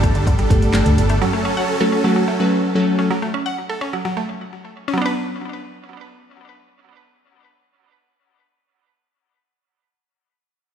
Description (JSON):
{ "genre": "dance-pop", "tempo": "127 BPM", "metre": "4/4", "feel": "straight", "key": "B minor", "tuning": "A4 = 440 Hz", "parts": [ { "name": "supersaw chords", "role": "sustained chords", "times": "0.0-3.1 s", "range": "F#3 to A4", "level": "-22 LUFS", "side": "right 2 dB", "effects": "sidechain pumping" }, { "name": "mallet-like synth pluck", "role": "arpeggios", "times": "0.0-10.0 s", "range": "D3 to F#5", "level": "-24 LUFS", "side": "right 1 dB", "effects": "chorus, sidechain pumping, ping-pong delay, slapback echo" }, { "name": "vintage muted fingered electric bass", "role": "bass", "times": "0.0-1.2 s", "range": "G1 to D2", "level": "-17 LUFS", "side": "equal", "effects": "sidechain pumping" }, { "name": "deep house drum kit", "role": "drums", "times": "0.0-1.2 s", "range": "handclaps, hi-hat, kick drum, snare drum", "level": "-19 LUFS", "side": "equal", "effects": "none" }, { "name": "glassy digital keys", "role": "accompaniment", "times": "0.4-3.1 s", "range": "F#3 to B5", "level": "-18 LUFS", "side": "left 1 dB", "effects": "chorus, sidechain pumping, slapback echo" } ], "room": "light reverb, digital ambience", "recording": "live gig heard through the venue's PA, club reverb", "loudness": "-16 LUFS", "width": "side -8 dB against mid", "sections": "0.0-5.0 A section; 5.0-8.8 B section", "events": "synth keys fill 0.3-1.2", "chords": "0.0 Gsus2; 1.2 F#m; 5.0 Bm", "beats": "0.27 0.74 | 1.22 1.69 2.16 2.63 | 3.11 3.58 4.05 4.52 | 5.00 5.47 5.94 6.41 | 6.89 7.36 7.83 8.30" }